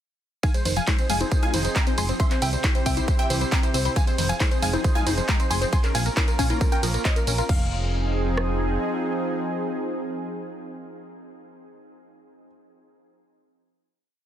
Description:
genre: uplifting trance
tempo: 136 BPM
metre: 4/4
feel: straight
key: F minor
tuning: A4 = 441 Hz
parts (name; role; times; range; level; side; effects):
- wide unison pluck; melody; 0.4-12.4 s; Bb4 to C6; -30 LUFS; right 1 dB; sidechain pumping, dub echo
- bright concert grand piano; second line; 0.4-12.4 s; Bb4 to C6; -35 LUFS; equal; sidechain pumping, dub echo
- lush unison pad; sustained chords; 0.8-11.8 s; C3 to Ab4; -30 LUFS; right 1 dB; chorus, sidechain pumping
- tight sequenced synth; arpeggios; 0.4-7.7 s; Eb3 to F4; -33 LUFS; left 4 dB; chorus, phaser, vintage 12-bit sampler grit, sidechain pumping, dub echo
- big-room dance drum kit; drums; 0.4-8.5 s; kick drum, rim click; -22 LUFS; equal; soft clipping on snare
- punchy analog drum machine; drums; 0.4-7.6 s; congas, crash cymbal, handclaps, hi-hat, ride cymbal, tambourine; -28 LUFS; equal; sidechain pumping on hats, sidechain pumping on cymbals, sidechain pumping on perc
- solid FM bass; bass; 0.7-8.8 s; F1 to C2; -26 LUFS; equal; sidechain pumping
room: little or no reverb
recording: dense, heavily limited modern master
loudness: -21 LUFS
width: side -10 dB against mid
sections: 0.4-7.5 drop; 7.5-11.0 final chord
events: drop 0.4-7.5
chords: 0.4 Fm7; 2.2 C; 4.0 Fm7; 5.7 Bbm; 7.5 Fm7

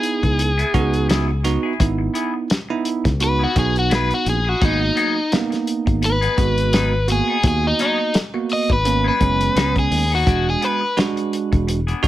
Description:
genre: straight-eighth soul blues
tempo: 85 BPM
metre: 4/4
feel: swing 56% on 16ths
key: G# minor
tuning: A4 = 438 Hz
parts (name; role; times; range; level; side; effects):
- overdriven electric guitar; melody; 0.0-11.0 s; D#4 to D#5; -21 LUFS; left 1 dB; none
- bell-like tine electric piano; accompaniment; 0.0-12.1 s; G#3 to F#4; -22 LUFS; right 6 dB; none
- warm soul drum kit; drums; 0.0-12.1 s; hi-hat, kick drum, snare drum; -21 LUFS; left 1 dB; none
- clean electric guitar; stabs; 0.2-12.1 s; F#3 to G#4; -26 LUFS; left 4 dB; phaser
- fingered electric bass; bass; 0.2-12.1 s; E1 to D#2; -21 LUFS; left 1 dB; none
room: light reverb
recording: none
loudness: -16 LUFS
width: side -14 dB against mid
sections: 0.0-12.1 A section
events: overdriven electric guitar solo 0.0-12.1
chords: 0.0 C#m7; 4.6 G#m7; 10.3 E7

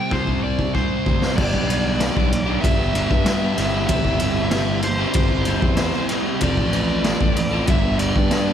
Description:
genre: quiet-loud alternative rock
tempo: 95 BPM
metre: 4/4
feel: straight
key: G mixolydian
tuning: A4 = 440 Hz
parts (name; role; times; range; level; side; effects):
- nasal lead guitar with a parked wah; melody; 0.0-8.5 s; C5 to G5; -26 LUFS; equal; overdrive
- overdriven semi-hollow guitar; riff; 0.0-8.5 s; C3 to A4; -26 LUFS; left 18 dB; none
- thick fuzz guitar; riff; 0.0-8.5 s; C3 to A4; -25 LUFS; right 14 dB; distortion
- fuzz picked electric bass; bass; 0.1-8.5 s; F1 to G2; -24 LUFS; equal; overdrive
- raw garage drum kit; drums; 0.1-8.5 s; crash cymbal, kick drum, ride cymbal, snare drum; -22 LUFS; equal; none
room: little or no reverb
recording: none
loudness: -17 LUFS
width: side -9 dB against mid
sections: 0.0-1.4 A section; 1.4-8.5 B section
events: lead electric guitar solo 0.0-1.4; drum fill 0.1-1.4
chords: 0.0 C5; 1.4 G; 3.6 C/G; 6.4 F; 7.7 G

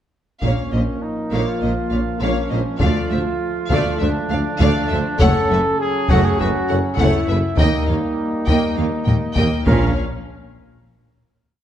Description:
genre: cinematic, epic orchestral film score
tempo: 101 BPM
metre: 4/4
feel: straight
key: unclear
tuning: A4 = 440 Hz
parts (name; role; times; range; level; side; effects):
- rich symphonic violin section; melody; 0.4-10.0 s; Eb5 to G5; -28 LUFS; left 3 dB; none
- dark studio violin section; second line; 0.4-10.0 s; Cb5 to Eb5; -28 LUFS; left 2 dB; none
- rich symphonic viola section; accompaniment; 0.4-10.0 s; A3 to Db4; -26 LUFS; right 1 dB; none
- warm French horn section; sustained chords; 0.4-9.9 s; Bb3 to A4; -27 LUFS; left 3 dB; none
- warm trombone section; sustained chords; 0.4-9.9 s; F3 to Db4; -27 LUFS; right 1 dB; none
- warm trumpet; stabs; 0.4-9.9 s; Db4 to Bb4; -25 LUFS; right 2 dB; none
- mellow tuba; bass; 0.4-9.9 s; Gb1 to Eb2; -26 LUFS; right 2 dB; none
- rich symphonic cello section; bass; 0.4-10.0 s; D2 to Bb2; -25 LUFS; right 1 dB; none
- rich symphonic double bass section; bass; 0.4-10.0 s; Gb1 to Eb2; -24 LUFS; right 1 dB; none
- taiko ensemble; drums; 0.4-10.8 s; none; -21 LUFS; left 1 dB; none
room: moderate recital hall reverb, RT60 1.5 s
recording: dark, warm production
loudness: -16 LUFS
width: side -10 dB against mid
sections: 0.4-10.0 theme; 10.0-11.6 final hit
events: none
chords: 0.4 Bbm; 2.8 Dm; 5.2 Gbm; 7.6 Eb; 9.7 Bbm; 10.0 N.C.

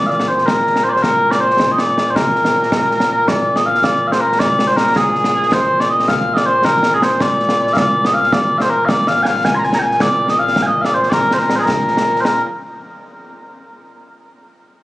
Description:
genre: scottish traditional, Scottish pipe music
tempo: 107 BPM (dotted quarters)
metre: 6/8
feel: straight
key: Bb mixolydian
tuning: A4 = 440 Hz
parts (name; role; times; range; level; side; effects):
- mellow small bagpipes; melody; 0.0-12.4 s; Bb2 to C6; -14 LUFS; equal; none
- concert snare drum and concert bass drum; drums; 0.1-12.4 s; none; -19 LUFS; equal; none
room: light reverb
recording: recorded on a phone in the room, club reverb, compression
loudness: -12 LUFS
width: side -17 dB against mid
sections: 0.0-3.3 A section; 3.3-12.3 B section; 12.3-13.4 C section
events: none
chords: none

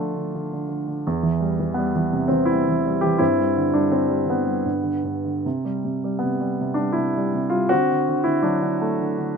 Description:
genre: classical, lyrical solo piano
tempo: 81 BPM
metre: 3/4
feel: uneven beats, rubato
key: C major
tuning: A4 = 441 Hz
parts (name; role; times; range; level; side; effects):
- warm grand piano; solo; 0.0-9.4 s; E2 to G4; -20 LUFS; equal; none
room: light reverb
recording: close, detailed microphones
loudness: -20 LUFS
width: side -6 dB against mid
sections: 0.0-9.4 A section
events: none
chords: 0.0 Dm; 1.1 C/E; 3.2 Gsus4; 4.7 G; 5.5 C5; 7.7 D7

